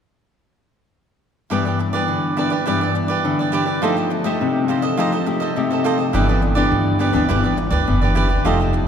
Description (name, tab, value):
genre	samba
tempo	104 BPM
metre	4/4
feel	straight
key	G major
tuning	A4 = 443 Hz
part	cavaquinho	accompaniment	1.5-8.8 s	E4 to Eb5	-21 LUFS	right 4 dB	none
part	nylon-string guitar	accompaniment	1.5-8.9 s	G2 to G4	-20 LUFS	left 3 dB	none
part	upright bass	bass	6.1-8.9 s	F1 to G2	-19 LUFS	equal	none
room	wet cathedral reverb, RT60 6.8 s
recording	recorded in a church or concert hall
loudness	-16 LUFS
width	side -8 dB against mid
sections	1.5-6.1 A section; 6.1-8.9 B section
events	none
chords	1.5 G6; 3.8 F9; 6.1 G6